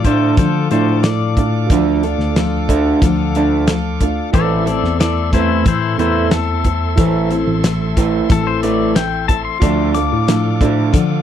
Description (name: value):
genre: folk rock and heartland rock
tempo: 91 BPM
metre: 4/4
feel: straight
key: D minor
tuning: A4 = 442 Hz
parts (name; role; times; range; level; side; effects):
- pedal steel guitar; second line; 0.0-11.2 s; E4 to D6; -22 LUFS; left 12 dB; none
- picked steel-string acoustic guitar; accompaniment; 0.0-11.2 s; A2 to A4; -21 LUFS; left 5 dB; none
- reed electric piano; accompaniment; 0.0-11.2 s; E4 to D5; -29 LUFS; right 10 dB; fast tremolo
- bright tonewheel organ; sustained chords; 0.0-11.2 s; A4 to D6; -28 LUFS; equal; slow rotary speaker, overdrive
- tine electric piano; bass; 0.0-11.2 s; A1 to D3; -19 LUFS; equal; medium stereo tremolo
- damped 70s drum kit; drums; 0.0-11.1 s; hi-hat, kick drum, snare drum; -15 LUFS; equal; none
- electric guitar through a small old amp; riff; 0.1-11.2 s; A2 to D4; -19 LUFS; right 5 dB; wide subtle chorus
room: little or no reverb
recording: dry, close 1970s-style studio recording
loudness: -13 LUFS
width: side -10 dB against mid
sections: 0.0-11.2 A section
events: pedal steel guitar solo 0.0-11.2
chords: 0.0 Dm; 4.3 Am; 9.6 Dm